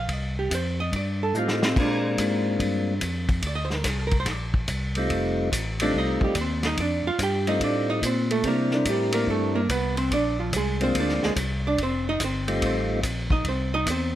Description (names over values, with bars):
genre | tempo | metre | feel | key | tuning
soul jazz organ trio | 144 BPM | 4/4 | swing 66% on 8ths | F mixolydian | A4 = 440 Hz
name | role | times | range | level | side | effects
archtop guitar, miked and amplified | accompaniment | 0.0-14.2 s | D3 to G5 | -27 LUFS | right 2 dB | none
tonewheel organ | bass | 0.0-14.2 s | F1 to C3 | -28 LUFS | equal | overdrive, stopped rotary speaker
warm soul drum kit | drums | 0.1-14.0 s | crash cymbal, hi-hat, kick drum, ride cymbal, snare drum | -28 LUFS | equal | none
percussive tonewheel organ | melody | 1.4-13.0 s | G3 to Bb4 | -27 LUFS | left 1 dB | slow rotary speaker, plate reverb
room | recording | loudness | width
light reverb | none | -22 LUFS | side -12 dB against mid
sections
0.0-14.2 A section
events
hollow-body jazz guitar solo 0.0-14.2; drum fill 1.4-1.8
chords
0.0 F9; 1.8 Bb9; 5.1 F9; 8.4 C9; 10.1 Bb9; 11.8 F9; 13.4 C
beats
| 0.10 0.51 0.93 1.35 | 1.77 2.19 2.60 3.02 | 3.44 3.86 4.27 4.69 | 5.11 5.53 5.94 6.36 | 6.78 7.20 7.61 8.03 | 8.45 8.87 9.28 9.70 | 10.12 10.53 10.95 11.37 | 11.78 12.20 12.62 13.03 | 13.45 13.86